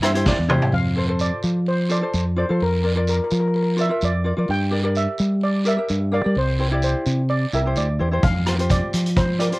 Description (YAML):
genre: calypso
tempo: 128 BPM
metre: 4/4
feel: straight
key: F major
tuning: A4 = 442 Hz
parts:
  - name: steel pan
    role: melody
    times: 0.0-9.6 s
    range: Bb4 to G5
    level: -26 LUFS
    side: right 1 dB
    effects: none
  - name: ukulele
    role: accompaniment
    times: 0.0-9.6 s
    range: E4 to F5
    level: -25 LUFS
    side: left 1 dB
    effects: none
  - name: fingered electric bass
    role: bass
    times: 0.0-9.5 s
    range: C2 to G3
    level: -20 LUFS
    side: equal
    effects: none
  - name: street-band drum kit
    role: drums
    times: 0.0-0.7, 8.2-9.6 s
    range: hi-hat, kick drum, rim click, snare drum, toms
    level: -21 LUFS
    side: equal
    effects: cassette tape
  - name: guiro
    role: percussion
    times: 0.3-9.5 s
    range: none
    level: -34 LUFS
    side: right 3 dB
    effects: none
room: moderate booth ambience, RT60 0.2 s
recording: home recording on cassette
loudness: -18 LUFS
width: side -22 dB against mid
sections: 0.7-9.6 A section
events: drum fill 0.3-0.7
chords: 0.0 C; 0.7 F; 2.6 Bb/F; 4.5 Gm; 6.4 Cadd9; 8.2 Fsus2